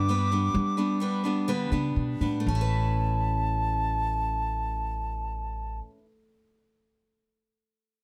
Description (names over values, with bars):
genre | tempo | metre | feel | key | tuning
folk | 59-67 BPM | 4/4 | straight | A mixolydian | A4 = 440 Hz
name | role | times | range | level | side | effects
wooden flute | melody | 0.0-5.8 s | A5 to D6 | -33 LUFS | equal | none
picked steel-string acoustic guitar | accompaniment | 0.0-6.1 s | G2 to B4 | -34 LUFS | equal | none
upright bass | bass | 0.0-5.8 s | A1 to G3 | -31 LUFS | equal | none
room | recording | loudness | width
light reverb | close, detailed microphones | -28 LUFS | mono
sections
0.0-2.5 A section; 2.5-6.5 B section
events
slowing down 0.0-2.5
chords
0.0 G; 2.5 Aadd9